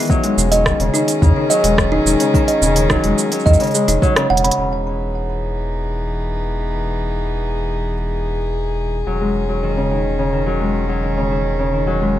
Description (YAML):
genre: folktronica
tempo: 107 BPM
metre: 4/4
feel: straight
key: E major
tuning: A4 = 438 Hz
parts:
  - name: kalimba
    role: second line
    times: 0.0-4.6 s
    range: D#4 to B5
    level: -19 LUFS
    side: right 2 dB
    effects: ping-pong delay
  - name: dark string quartet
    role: sustained chords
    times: 0.0-12.2 s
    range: D#3 to G#4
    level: -24 LUFS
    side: left 2 dB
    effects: none
  - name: Celtic harp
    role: arpeggios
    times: 0.0-12.2 s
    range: C#3 to C#4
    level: -19 LUFS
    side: left 2 dB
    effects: ping-pong delay
  - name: organic electronic drum kit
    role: drums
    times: 0.0-4.6 s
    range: hi-hat, rim click, shaker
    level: -21 LUFS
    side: right 2 dB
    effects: none
  - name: electronic kick drum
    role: drums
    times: 0.1-4.1 s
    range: none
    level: -18 LUFS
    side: equal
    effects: none
  - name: warm sub bass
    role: bass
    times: 0.4-12.2 s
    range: E1 to E2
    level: -20 LUFS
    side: equal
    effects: tube saturation
room: light reverb, small room ambience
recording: none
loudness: -15 LUFS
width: side -12 dB against mid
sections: 0.0-4.6 A section; 4.6-12.2 B section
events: drum fill 4.3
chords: 0.1 B69/E; 4.6 Emaj7; 9.1 Emaj13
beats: | 0.10 0.66 1.22 1.78 | 2.34 2.90 3.46 4.02 | 4.58 5.14 5.70 6.26 | 6.83 7.39 7.95 8.51 | 9.07 9.63 10.19 10.75 | 11.31 11.87